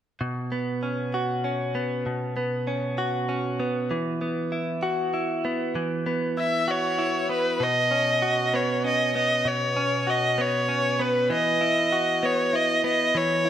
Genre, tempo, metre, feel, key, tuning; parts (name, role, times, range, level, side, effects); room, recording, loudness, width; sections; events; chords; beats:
pop; 65 BPM (dotted quarters); 6/8; straight; B major; A4 = 442 Hz
direct-recorded clean electric guitar; accompaniment; 0.2-13.5 s; B2 to F#4; -25 LUFS; equal; wide subtle chorus
rich violin; melody; 6.4-13.5 s; B4 to E5; -22 LUFS; equal
moderate lush hall reverb, RT60 2.2 s; -22 LUFS; side -10 dB against mid
0.2-7.6 A section; 7.6-13.5 B section
0.2 Bsus2; 3.9 Esus2; 7.6 Badd9; 11.3 Esus2
| 0.21 1.14 | 2.06 2.99 | 3.91 4.84 | 5.76 6.69 | 7.61 8.54 | 9.46 10.38 | 11.31 12.23 | 13.15